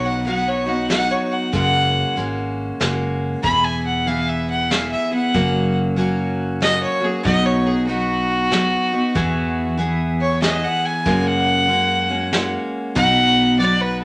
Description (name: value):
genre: honky-tonk and classic country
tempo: 94 BPM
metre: 3/4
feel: swing 63% on 8ths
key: B major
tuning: A4 = 440 Hz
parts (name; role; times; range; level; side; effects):
- clear fiddle; melody; 0.0-14.0 s; F#4 to B5; -22 LUFS; equal; none
- picked steel-string acoustic guitar; accompaniment; 0.0-14.0 s; F#2 to G#4; -23 LUFS; equal; none
- fretless electric bass; bass; 0.0-14.0 s; E1 to F#2; -29 LUFS; equal; none
- vintage brush drum kit; drums; 0.3-13.8 s; hi-hat, kick drum, snare drum; -26 LUFS; equal; none
room: wet studio reverb, RT60 0.7 s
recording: none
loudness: -19 LUFS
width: mono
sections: 0.0-14.0 A section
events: fiddle solo 0.0-14.0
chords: 0.0 B; 1.5 F#add9; 3.4 E; 5.3 F#; 7.3 B; 9.2 E; 11.1 F#add9; 13.0 B